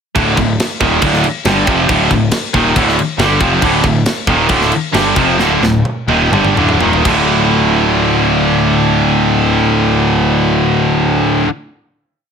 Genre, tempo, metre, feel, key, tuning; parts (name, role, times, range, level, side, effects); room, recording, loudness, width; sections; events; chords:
heavy metal; 119-138 BPM; 4/4; straight; D minor; A4 = 440 Hz
tight distorted guitar; riff; 0.1-11.5 s; D2 to G3; -15 LUFS; right 10 dB; distortion
overdriven electric guitar; riff; 0.2-11.5 s; D2 to F4; -18 LUFS; equal
scooped high-gain guitar; riff; 0.2-11.5 s; D2 to G3; -16 LUFS; left 8 dB; distortion
fuzz picked electric bass; bass; 0.2-11.4 s; D1 to G1; -19 LUFS; equal; overdrive
tight metal drum kit; drums; 0.2-7.2 s; crash cymbal, kick drum, snare drum, toms; -18 LUFS; equal
light reverb; -10 LUFS; side -6 dB against mid
0.2-7.3 riff; 7.3-11.4 final hit
slowing down 3.6-7.3; drum fill 5.4-7.3
0.2 Dm